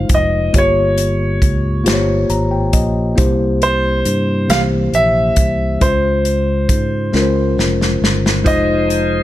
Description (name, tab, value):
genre	slow gospel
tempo	46 BPM (dotted quarters)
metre	6/8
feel	straight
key	unclear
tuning	A4 = 440 Hz
part	clear grand piano	melody	0.0-9.2 s	C5 to F5	-18 LUFS	equal	none
part	mellow tine electric piano	accompaniment	0.0-9.2 s	G2 to Bb5	-18 LUFS	left 2 dB	none
part	fingered electric bass	bass	0.0-9.2 s	F1 to Ab2	-18 LUFS	equal	none
part	natural country drum kit	drums	0.1-9.1 s	hi-hat, kick drum, snare drum	-17 LUFS	equal	none
part	bright tonewheel organ	sustained chords	8.4-9.2 s	F3 to C5	-20 LUFS	right 2 dB	slow rotary speaker
room	light reverb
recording	none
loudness	-13 LUFS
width	side -14 dB against mid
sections	0.0-9.2 A section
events	tine electric piano fill 1.9-3.2; drum fill 7.1-8.5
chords	0.0 Fm7; 0.5 Gm7b5; 3.2 C7; 5.8 Dbmaj7; 8.5 Fm7